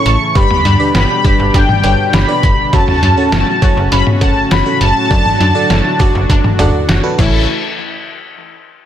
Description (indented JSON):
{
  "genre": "synth-pop",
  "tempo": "101 BPM",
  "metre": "4/4",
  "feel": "straight",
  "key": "unclear",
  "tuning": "A4 = 440 Hz",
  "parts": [
    { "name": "mellow synth brass", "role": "melody", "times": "0.0-6.9 s", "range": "G5 to C#6", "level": "-15 LUFS", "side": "left 1 dB", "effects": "chorus, tape echo" },
    { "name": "FM electric piano", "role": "accompaniment", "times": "0.0-7.5 s", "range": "C#4 to A5", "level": "-20 LUFS", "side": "right 3 dB", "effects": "chorus" },
    { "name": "brassy analog pad", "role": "sustained chords", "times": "0.0-7.5 s", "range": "A2 to A4", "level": "-19 LUFS", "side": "left 1 dB", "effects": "chorus, tremolo" },
    { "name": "wide unison pluck", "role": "arpeggios", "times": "0.1-7.5 s", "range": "E3 to B5", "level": "-23 LUFS", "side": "left 3 dB", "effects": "tape echo" },
    { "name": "slap-like FM bass", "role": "bass", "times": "0.1-7.5 s", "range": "F#1 to G2", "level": "-14 LUFS", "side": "equal", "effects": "none" },
    { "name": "lo-fi sampler-style drum kit", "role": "drums", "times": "0.1-7.3 s", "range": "cowbell, crash cymbal, hi-hat, kick drum, snare drum, toms", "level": "-15 LUFS", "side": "equal", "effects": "none" }
  ],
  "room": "light reverb, digital ambience",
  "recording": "dense, heavily limited modern master",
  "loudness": "-9 LUFS",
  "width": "side -10 dB against mid",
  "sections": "0.0-7.5 A section; 7.5-8.9 B section",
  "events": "FM electric piano fill 6.6-7.5",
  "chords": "0.4 G; 2.7 F#m; 5.1 D/F#; 7.2 A; 7.5 N.C."
}